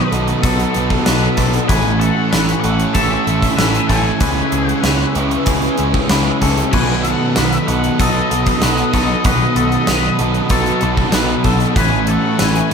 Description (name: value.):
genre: rock, shoegaze and dream pop.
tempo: 95 BPM.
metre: 4/4.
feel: straight.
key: B mixolydian.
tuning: A4 = 440 Hz.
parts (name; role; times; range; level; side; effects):
octave-fuzz lead guitar; melody; 0.0-12.7 s; D#5 to G#5; -24 LUFS; left 4 dB; distortion, digital delay.
airy breathy pad; sustained chords; 0.0-12.7 s; A4 to E6; -26 LUFS; equal; chorus.
twangy electric guitar; arpeggios; 0.0-12.7 s; G#4 to B4; -23 LUFS; left 6 dB; lush chorus, digital delay.
overdriven semi-hollow guitar; riff; 0.0-12.7 s; A2 to A4; -19 LUFS; right 6 dB; reverse reverb.
thick fuzz guitar; riff; 0.0-12.7 s; A2 to C#4; -21 LUFS; left 7 dB; distortion, ensemble chorus.
growling picked electric bass; bass; 0.1-12.6 s; A1 to C#2; -20 LUFS; equal; overdrive.
gated 80s drum kit; drums; 0.1-12.7 s; crash cymbal, hi-hat, kick drum, snare drum; -18 LUFS; equal; none.
room: moderate echo chamber reverb, RT60 1.8 s.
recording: none.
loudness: -13 LUFS.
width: side -6 dB against mid.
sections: 0.0-12.7 A section.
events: none.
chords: 0.0 B7; 1.7 Amaj7; 4.2 C#m7; 6.7 B7; 11.8 Amaj7.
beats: 0.43 1.06 | 1.69 2.32 2.95 3.58 | 4.21 4.84 5.47 6.10 | 6.73 7.36 7.99 8.61 | 9.24 9.87 10.50 11.13 | 11.76 12.38.